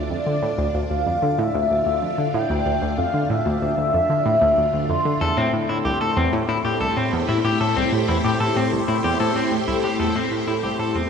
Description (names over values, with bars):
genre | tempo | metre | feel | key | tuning
ambient, sequencer-driven space music | 94 BPM | 4/4 | straight | D minor | A4 = 440 Hz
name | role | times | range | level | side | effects
phased string machine | sustained chords | 0.0-11.1 s | D3 to D5 | -26 LUFS | equal | ensemble chorus, phaser
analog pluck | riff | 0.0-11.1 s | C2 to D3 | -23 LUFS | equal | chorus, tape echo
mellow horn-like synth lead | melody | 0.1-5.6 s | D5 to C6 | -23 LUFS | equal | lush chorus, tape echo
electric guitar at the edge of break-up | arpeggios | 5.2-11.1 s | C4 to A4 | -23 LUFS | left 3 dB | auto-pan, tape echo
room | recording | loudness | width
wet cathedral reverb, RT60 6.1 s | in a vast, echoing space | -18 LUFS | side -6 dB against mid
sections
0.0-11.1 A section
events
fade-in on string machine 0.0-11.1; fade-out 8.6-11.1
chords
0.0 Dmadd9; 5.2 Am7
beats
| 0.11 0.74 1.38 2.02 | 2.66 3.30 3.94 4.57 | 5.21 5.85 6.49 7.13 | 7.76 8.40 9.04 9.68 | 10.32 10.96